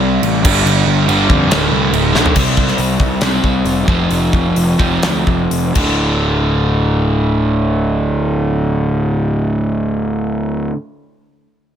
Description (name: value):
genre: hard rock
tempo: 118-141 BPM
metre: 4/4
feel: straight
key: D minor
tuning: A4 = 435 Hz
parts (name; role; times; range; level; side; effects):
- overdriven semi-hollow guitar; riff; 0.0-10.8 s; D2 to C4; -15 LUFS; equal; none
- fuzz picked electric bass; bass; 0.0-10.7 s; D1 to F2; -19 LUFS; equal; overdrive
- gated 80s drum kit; drums; 0.2-5.9 s; crash cymbal, hi-hat, kick drum, snare drum, toms; -17 LUFS; equal; none
room: little or no reverb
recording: none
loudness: -12 LUFS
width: side -9 dB against mid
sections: 0.0-2.4 A section; 2.4-6.0 B section; 6.0-10.1 C section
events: drum fill 2.1; slowing down 2.4-6.0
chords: 0.4 G5; 1.5 D5; 2.4 C5; 3.9 F5; 5.8 D5